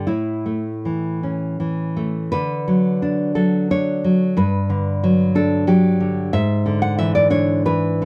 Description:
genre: romantic piece for solo classical guitar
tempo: 76-92 BPM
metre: 3/4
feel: rubato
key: D major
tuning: A4 = 440 Hz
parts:
  - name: nylon-string guitar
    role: solo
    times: 0.0-8.1 s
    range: G2 to F#5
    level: -19 LUFS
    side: equal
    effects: none
room: little or no reverb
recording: dry, close 1970s-style studio recording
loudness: -19 LUFS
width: mono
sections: 0.0-2.3 A section; 2.3-8.1 A section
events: none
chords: 0.1 A; 2.3 D; 4.4 Gmaj7; 6.3 E7/G#

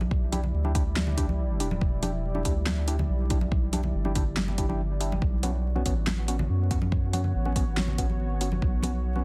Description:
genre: deep dubstep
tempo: 141 BPM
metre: 4/4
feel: half-time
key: E dorian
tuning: A4 = 440 Hz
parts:
  - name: deep dark ambient pad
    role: sustained chords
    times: 0.0-9.2 s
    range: G3 to D5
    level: -40 LUFS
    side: equal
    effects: chorus, built-in reverb
  - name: soft dub sub bass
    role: bass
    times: 0.0-9.2 s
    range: E1 to F#2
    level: -30 LUFS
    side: equal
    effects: none
  - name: congas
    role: percussion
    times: 0.0-9.2 s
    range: none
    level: -37 LUFS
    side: equal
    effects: none
  - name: electronic kick drum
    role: drums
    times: 0.1-8.7 s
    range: none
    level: -29 LUFS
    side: equal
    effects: studio reverb
  - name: percussive organ stab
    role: stabs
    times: 0.3-9.2 s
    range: B3 to G4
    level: -37 LUFS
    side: equal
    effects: chorus, dub echo
  - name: deep house drum kit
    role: drums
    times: 0.3-8.9 s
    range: handclaps, hi-hat, snare drum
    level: -34 LUFS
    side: equal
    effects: studio reverb
room: digital ambience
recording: dense, heavily limited modern master, vinyl crackle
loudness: -27 LUFS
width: mono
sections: 0.0-9.2 A section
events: none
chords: 0.0 Em7; 5.2 Bsus2

